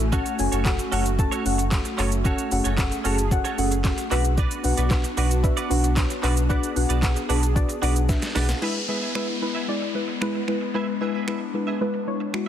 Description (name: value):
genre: dance-pop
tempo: 113 BPM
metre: 4/4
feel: straight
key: unclear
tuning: A4 = 440 Hz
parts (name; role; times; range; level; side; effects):
- deep mellow chord stab; accompaniment; 0.0-12.5 s; G#3 to A5; -27 LUFS; left 1 dB; chorus, phaser, sidechain pumping
- airy breathy pad; sustained chords; 0.0-12.5 s; G#3 to G#4; -30 LUFS; left 2 dB; chorus, sidechain pumping
- sub bass with octave; bass; 0.0-8.5 s; F#1 to B1; -24 LUFS; equal; sidechain pumping
- direct-recorded clean electric guitar; riff; 0.1-12.4 s; C#4 to E5; -33 LUFS; right 7 dB; ensemble chorus
- smooth R&B drum kit; drums; 0.1-12.5 s; crash cymbal, finger snaps, handclaps, hi-hat, kick drum, shaker, snare drum; -26 LUFS; equal; soft clipping on snare
- downlifter; sound effects; 8.6-12.5 s; none; -34 LUFS; equal; none
room: light reverb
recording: dense, heavily limited modern master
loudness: -21 LUFS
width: side -10 dB against mid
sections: 0.0-8.6 A section; 8.6-12.5 B section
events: drum fill 8.1-8.6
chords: 0.1 F#m; 4.1 Bm; 8.6 E